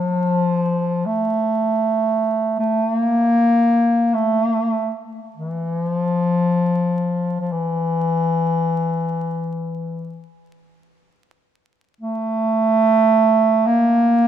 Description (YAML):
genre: japanese traditional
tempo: free time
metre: none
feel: none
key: unclear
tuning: A4 = 440 Hz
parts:
  - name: clear bass clarinet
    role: solo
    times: 0.0-14.3 s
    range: E3 to Bb3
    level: -17 LUFS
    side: equal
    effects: none
room: moderate plate reverb, RT60 2.8 s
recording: vinyl crackle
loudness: -17 LUFS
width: side -10 dB against mid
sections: 0.0-14.3 A section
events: none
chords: none